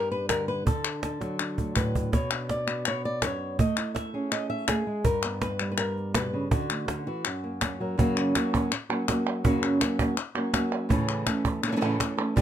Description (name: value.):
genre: flamenco.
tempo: 164 BPM.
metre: 4/4.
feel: straight.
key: unclear.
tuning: A4 = 443 Hz.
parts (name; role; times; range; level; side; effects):
flamenco guitar; melody; 0.0-12.4 s; F#2 to E5; -27 LUFS; equal; none.
cajon; percussion; 0.3-12.4 s; none; -27 LUFS; right 2 dB; none.
palmas hand claps; percussion; 0.3-12.4 s; none; -30 LUFS; left 4 dB; none.
room: little or no reverb.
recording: close, detailed microphones.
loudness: -25 LUFS.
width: side -10 dB against mid.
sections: 0.0-8.0 A section; 8.0-12.4 B section.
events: drum fill 1.2-2.1.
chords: 0.0 G; 0.7 D; 2.1 Bmadd9; 3.6 Amaj7; 5.1 G; 6.5 D; 7.2 F#; 10.9 A.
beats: 0.30 | 0.66 1.03 1.39 1.76 | 2.13 2.49 2.86 3.22 | 3.59 3.96 4.32 4.69 | 5.05 5.42 5.79 6.15 | 6.52 6.88 7.25 7.61 | 7.98 8.35 8.71 9.08 | 9.44 9.81 10.18 10.54 | 10.91 11.27 11.64 12.01 | 12.37.